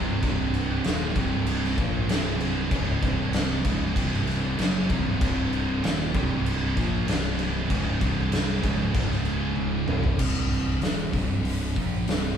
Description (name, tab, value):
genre	stoner and doom metal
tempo	96 BPM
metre	4/4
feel	straight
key	C minor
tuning	A4 = 441 Hz
part	distorted electric guitar	riff	0.0-10.2 s	C2 to Bb3	-33 LUFS	equal	overdrive
part	thick fuzz guitar	riff	0.0-12.4 s	C2 to Bb3	-31 LUFS	left 4 dB	distortion
part	thick fuzz guitar	riff	0.0-12.4 s	C2 to Bb3	-30 LUFS	right 6 dB	distortion
part	fuzz fingered electric bass	bass	0.0-12.4 s	C1 to Bb1	-32 LUFS	left 1 dB	overdrive
part	oversized low-tuned drum kit	drums	0.2-12.2 s	crash cymbal, hi-hat, kick drum, snare drum, toms	-26 LUFS	equal	none
room	moderate studio reverb, RT60 0.6 s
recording	band playing live in one room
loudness	-23 LUFS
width	side -8 dB against mid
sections	0.0-10.2 A section; 10.2-12.4 B section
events	drum fill 9.6-10.2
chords	0.0 Cm; 9.0 Db5; 9.9 C5; 10.2 Cm